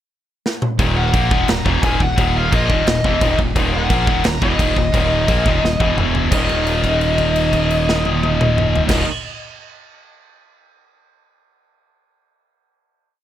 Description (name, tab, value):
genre	heavy metal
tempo	174 BPM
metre	4/4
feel	straight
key	unclear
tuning	A4 = 440 Hz
part	big rock drum kit	drums	0.5-9.0 s	crash cymbal, kick drum, snare drum, toms	-20 LUFS	equal	none
part	heavy high-gain guitar	riff	0.8-9.1 s	Eb2 to Bb3	-26 LUFS	right 2 dB	distortion
part	high-gain distorted guitar	riff	0.8-9.1 s	Eb2 to Bb3	-22 LUFS	left 7 dB	distortion
part	sludgy distorted guitar	riff	0.8-9.1 s	Eb2 to Bb3	-25 LUFS	right 14 dB	overdrive
part	growling fingered electric bass	bass	0.8-9.0 s	Eb1 to Bb1	-21 LUFS	equal	overdrive
part	high-gain lead guitar	melody	1.0-9.0 s	Eb5 to Bb5	-21 LUFS	left 2 dB	distortion, ping-pong delay
room	little or no reverb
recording	none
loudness	-14 LUFS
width	side -11 dB against mid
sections	0.0-0.8 pickup bar; 0.8-6.3 riff; 6.3-9.1 final chord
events	drum fill 0.4-0.8, 5.6-6.3; held note 6.3-8.9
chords	0.0 N.C.; 0.8 Ebm; 6.0 E5; 6.3 Eb5